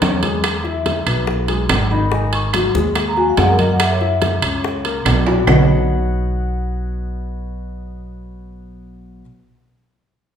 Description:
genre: Afro-Cuban jazz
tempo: 143 BPM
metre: 4/4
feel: straight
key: B major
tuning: A4 = 438 Hz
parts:
  - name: warm baby grand piano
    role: accompaniment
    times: 0.0-9.2 s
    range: D#3 to F#5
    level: -22 LUFS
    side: left 4 dB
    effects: none
  - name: upright bass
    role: bass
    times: 0.0-9.2 s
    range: G#1 to F#2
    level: -20 LUFS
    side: right 1 dB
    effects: none
  - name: bongos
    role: percussion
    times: 0.0-5.6 s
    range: none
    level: -28 LUFS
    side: left 3 dB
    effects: none
  - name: congas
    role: percussion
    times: 0.0-5.6 s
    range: none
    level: -22 LUFS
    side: right 1 dB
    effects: none
  - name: timbales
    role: percussion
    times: 0.0-5.6 s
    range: none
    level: -22 LUFS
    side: right 4 dB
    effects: none
  - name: claves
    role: percussion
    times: 0.4-5.6 s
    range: none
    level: -29 LUFS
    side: right 4 dB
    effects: none
  - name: vibraphone with medium mallets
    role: melody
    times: 1.9-4.0 s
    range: A#4 to C#6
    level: -21 LUFS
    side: right 1 dB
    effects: none
room: wet large studio reverb, RT60 1.3 s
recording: band playing live in one room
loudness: -15 LUFS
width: side -8 dB against mid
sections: 0.0-5.5 A section; 5.5-8.8 B section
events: vibraphone solo 0.0-5.5; drum fill 5.3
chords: 0.4 E; 2.1 G#5; 3.8 F#7; 5.5 Badd9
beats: 0.02 | 0.44 0.85 1.27 1.70 | 2.12 2.54 2.96 3.38 | 3.80 4.22 4.64 5.06 | 5.48 5.90 6.32 6.74 | 7.16 7.58 8.00 8.42

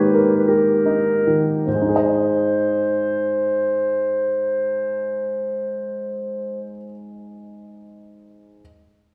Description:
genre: classical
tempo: 52 BPM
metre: 3/4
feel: rubato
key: unclear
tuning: A4 = 441 Hz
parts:
  - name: warm grand piano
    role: melody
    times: 0.0-8.6 s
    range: G#2 to D#5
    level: -24 LUFS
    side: equal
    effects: none
  - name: mellow clarinet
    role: second line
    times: 0.0-6.6 s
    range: A#4 to B#4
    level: -23 LUFS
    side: equal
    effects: none
room: wet recital hall reverb, RT60 1.5 s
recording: heard from further back in the room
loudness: -20 LUFS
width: mono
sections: 0.0-1.7 A section; 1.7-8.6 B section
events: slowing down 0.0-1.7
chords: 0.0 D#/G#; 1.7 G#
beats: 0.47 | 1.65 2.81 3.97 | 5.13 6.28 7.43

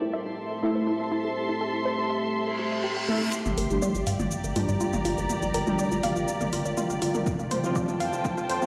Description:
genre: melodic techno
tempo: 122 BPM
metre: 4/4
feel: straight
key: G dorian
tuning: A4 = 440 Hz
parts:
  - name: deep dark ambient pad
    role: sustained chords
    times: 0.0-8.7 s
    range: G3 to C5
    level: -37 LUFS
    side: equal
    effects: chorus, built-in reverb, sidechain pumping
  - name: unison pluck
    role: arpeggios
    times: 0.0-8.7 s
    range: E4 to G5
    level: -34 LUFS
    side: equal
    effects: sidechain pumping, tape echo
  - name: muted studio string section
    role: texture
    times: 0.0-8.7 s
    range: F4 to C6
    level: -34 LUFS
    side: equal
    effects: sidechain pumping
  - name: synth brass stab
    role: stabs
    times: 0.6-8.7 s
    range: F3 to A4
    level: -34 LUFS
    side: equal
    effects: chorus, sidechain pumping, tape echo
  - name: reverse cymbal and riser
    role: sound effects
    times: 2.5-8.7 s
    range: none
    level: -40 LUFS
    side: equal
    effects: none
  - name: deep house drum kit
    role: drums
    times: 3.3-8.7 s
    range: hi-hat, shaker, toms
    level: -34 LUFS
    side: equal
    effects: overdrive, small room reverb
  - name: gritty driven synth bass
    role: bass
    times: 3.5-8.7 s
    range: F1 to G2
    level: -34 LUFS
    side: equal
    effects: sidechain pumping
  - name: electronic kick drum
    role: drums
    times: 7.3-8.4 s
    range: none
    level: -33 LUFS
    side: equal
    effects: overdrive, small room reverb
room: wet recital hall reverb, RT60 1.3 s, digital ambience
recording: played on a big sound system in a bare room, large studio reverb, high-pass filter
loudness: -27 LUFS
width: mono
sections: 0.0-3.3 A section; 3.3-8.7 B section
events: reverse cymbal 2.5-3.3; build-up 3.3-8.7; filter sweep on synth pluck 3.3-8.7; filter sweep on synth stab 3.3-8.7; drum fill 7.3-8.7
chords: 0.0 Am7; 3.3 Gm7; 7.3 F6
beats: 0.38 0.87 | 1.36 1.86 2.35 2.84 | 3.33 3.82 4.32 4.81 | 5.30 5.79 6.28 6.77 | 7.27 7.76 8.25

